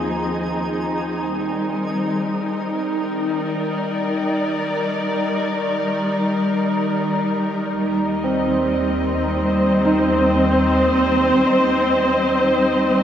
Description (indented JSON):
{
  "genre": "ambient",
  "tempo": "free time",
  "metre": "none",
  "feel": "none",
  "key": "Eb major",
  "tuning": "A4 = 440 Hz",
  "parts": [
    { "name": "muted studio string section", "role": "sustained chords", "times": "0.0-13.0 s", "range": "Eb2 to Eb5", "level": "-18 LUFS", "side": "equal", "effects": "shimmer reverb" },
    { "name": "overtone-sweeping drone", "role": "drone", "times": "0.0-13.0 s", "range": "Eb3 to Eb4", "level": "-27 LUFS", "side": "equal", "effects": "chorus, built-in reverb, phaser" },
    { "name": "twinkling granular texture", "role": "texture", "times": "0.0-1.3 s", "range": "Ab4 to Ab5", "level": "-35 LUFS", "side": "right 2 dB", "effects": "built-in reverb, shimmer reverb" },
    { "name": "felt-muted upright piano", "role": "arpeggios", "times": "8.2-13.0 s", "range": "C4 to Eb4", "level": "-24 LUFS", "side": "right 2 dB", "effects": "tape echo, shimmer reverb" }
  ],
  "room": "wet huge ambient reverb, RT60 8.0 s",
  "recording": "none",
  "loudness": "-17 LUFS",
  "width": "side -9 dB against mid",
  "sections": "0.0-1.3 A section; 1.3-13.0 B section",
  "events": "fade-out on synth drone 1.3-13.0",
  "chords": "0.0 Fm7/Eb; 1.3 Ebmaj7; 7.7 Cm/Eb",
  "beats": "free time"
}